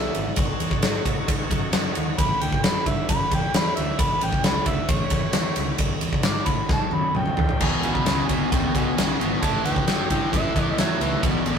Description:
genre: blues rock power trio and southern rock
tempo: 133 BPM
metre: 4/4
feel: straight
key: unclear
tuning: A4 = 439 Hz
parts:
  - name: overdriven harmonica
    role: melody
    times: 0.0-11.6 s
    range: C#5 to D6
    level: -28 LUFS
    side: right 1 dB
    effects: none
  - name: overdriven tonewheel organ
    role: sustained chords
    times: 0.0-11.6 s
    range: F#3 to D5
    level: -34 LUFS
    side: right 1 dB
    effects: slow rotary speaker
  - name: fuzz fingered electric bass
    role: bass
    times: 0.0-11.6 s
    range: E1 to A2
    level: -29 LUFS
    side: equal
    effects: overdrive
  - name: huge arena drum kit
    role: drums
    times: 0.1-11.6 s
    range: crash cymbal, kick drum, ride cymbal, snare drum, toms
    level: -22 LUFS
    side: equal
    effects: none
  - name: biting overdriven guitar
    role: riff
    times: 7.6-11.6 s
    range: E2 to F#3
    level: -24 LUFS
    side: left 1 dB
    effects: none
room: moderate studio reverb, RT60 0.6 s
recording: rough rehearsal-room recording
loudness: -20 LUFS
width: side -7 dB against mid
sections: 0.0-7.6 A section; 7.6-11.6 B section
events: harmonica solo 0.0-7.6; drum fill 6.7-7.6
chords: 0.4 B7 (rootless); 2.2 A7 (rootless); 4.0 E7; 4.9 A7; 5.8 B7; 7.6 E7; 9.4 A7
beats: | 0.37 0.82 1.28 1.73 | 2.18 2.63 3.09 3.54 | 3.99 4.44 4.89 5.35 | 5.80 6.25 6.70 7.15 | 7.60 8.06 8.51 8.96 | 9.41 9.87 10.32 10.77 | 11.22

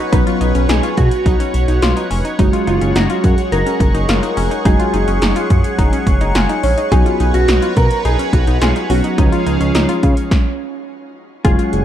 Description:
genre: synth-pop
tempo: 106 BPM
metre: 4/4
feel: straight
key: Db mixolydian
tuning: A4 = 440 Hz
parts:
  - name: mellow electric guitar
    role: melody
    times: 0.0-11.8 s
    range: Db4 to Cb5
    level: -21 LUFS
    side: right 2 dB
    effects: ensemble chorus, shimmer reverb
  - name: muted felt-like synth keys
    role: accompaniment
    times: 0.0-11.8 s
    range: F3 to Db6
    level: -22 LUFS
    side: equal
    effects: chorus, phaser, shimmer reverb
  - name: phased analog pad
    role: sustained chords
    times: 0.0-11.8 s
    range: Ab4 to Db6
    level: -24 LUFS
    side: equal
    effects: phaser, chorus, shimmer reverb
  - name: analog pluck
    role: arpeggios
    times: 0.0-11.8 s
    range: Db4 to F4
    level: -23 LUFS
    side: left 4 dB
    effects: chorus, tape echo, shimmer reverb
  - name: smooth synth bass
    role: bass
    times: 0.1-11.8 s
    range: F1 to Db3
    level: -17 LUFS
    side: equal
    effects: none
  - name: 80s electronic pad drums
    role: drums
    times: 0.1-11.8 s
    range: hi-hat, kick drum, snare drum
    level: -16 LUFS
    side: equal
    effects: none
room: light reverb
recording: dark, warm production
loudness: -12 LUFS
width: side -11 dB against mid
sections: 0.0-11.4 A section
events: synth keys fill 5.8-6.9; stop 10.3-11.4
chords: 0.0 Cbsus2; 2.4 Gbsus2; 6.9 Cbsus2; 9.2 Db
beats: | 0.12 0.69 1.26 1.82 | 2.39 2.96 3.52 4.09 | 4.65 5.22 5.79 6.35 | 6.92 7.48 8.05 8.62 | 9.18 9.75 10.31 10.88 | 11.45

